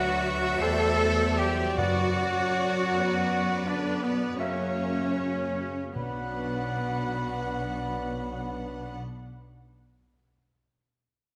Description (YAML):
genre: classical, slow romantic movement for symphony orchestra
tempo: 36-57 BPM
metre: 3/4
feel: rubato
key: B minor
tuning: A4 = 437 Hz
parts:
  - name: rich chamber violin section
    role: melody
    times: 0.0-9.0 s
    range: C#5 to F#5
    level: -40 LUFS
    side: equal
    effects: none
  - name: rich chamber violin section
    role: second line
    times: 0.0-9.0 s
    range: F#4 to E5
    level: -42 LUFS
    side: equal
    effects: none
  - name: silver concert flute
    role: second line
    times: 0.0-9.0 s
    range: B4 to B5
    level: -40 LUFS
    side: equal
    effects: none
  - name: warm oboe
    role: second line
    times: 0.0-9.0 s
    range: B3 to B4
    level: -39 LUFS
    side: equal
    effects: none
  - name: clear chamber viola section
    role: accompaniment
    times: 0.0-9.0 s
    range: F#3 to D5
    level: -39 LUFS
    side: equal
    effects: none
  - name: mellow French horn section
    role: sustained chords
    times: 0.0-9.0 s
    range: B2 to A3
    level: -38 LUFS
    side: equal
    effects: none
  - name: warm trumpet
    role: stabs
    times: 0.0-9.0 s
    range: B3 to B4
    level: -38 LUFS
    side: equal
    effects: none
  - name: rich chamber double bass section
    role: bass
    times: 0.0-9.0 s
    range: B1 to F#2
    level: -35 LUFS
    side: equal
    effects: none
  - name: rich symphonic cello section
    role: bass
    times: 0.0-9.0 s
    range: B3 to A4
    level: -34 LUFS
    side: equal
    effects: none
  - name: mellow clarinet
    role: second line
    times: 0.6-9.0 s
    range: C5 to E5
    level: -42 LUFS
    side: equal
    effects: none
  - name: clear bassoon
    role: accompaniment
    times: 0.6-9.0 s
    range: G3 to B3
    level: -41 LUFS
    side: equal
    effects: none
  - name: timpani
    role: percussion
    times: 1.8-9.0 s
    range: F#2 to B2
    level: -37 LUFS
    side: equal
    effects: none
room: moderate scoring stage reverb, RT60 1.8 s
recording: none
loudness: -28 LUFS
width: mono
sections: 0.0-6.0 A section; 6.0-10.5 B section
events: slowing down 0.0-6.0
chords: 0.0 Bm/D; 0.6 C/E; 1.8 Bm/F#; 4.4 F#7; 6.0 Bm